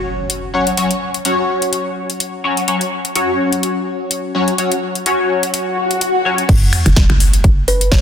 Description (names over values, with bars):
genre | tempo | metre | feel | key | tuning
bass house | 126 BPM | 4/4 | swing 55% on 16ths | unclear | A4 = 440 Hz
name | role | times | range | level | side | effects
band-passed chord stab | stabs | 0.0-6.4 s | F#3 to C#5 | -17 LUFS | left 2 dB | phaser, ensemble chorus, sidechain pumping, tape echo
impact, swell and sub drop | sound effects | 0.0-0.8, 5.7-8.0 s | none | -20 LUFS | equal | none
big-room dance drum kit | drums | 0.3-8.0 s | crash cymbal, finger snaps, hi-hat, snare drum | -20 LUFS | left 2 dB | none
hollow knocking FM bass | bass | 6.5-8.0 s | E1 to F#1 | -14 LUFS | equal | tube saturation, sidechain pumping
electronic kick drum | drums | 6.5-8.0 s | none | -12 LUFS | equal | none
kalimba | melody | 7.7-8.0 s | B4 to C#5 | -18 LUFS | right 1 dB | none
room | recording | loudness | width
moderate lush hall reverb, RT60 2.3 s | dense, heavily limited modern master | -14 LUFS | side -9 dB against mid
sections
0.0-6.5 A section; 6.5-8.0 B section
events
impact 0.0-0.8, 6.5-8.0; swell 5.7-6.5; drop 6.5-8.0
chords
0.0 F#5; 6.5 N.C.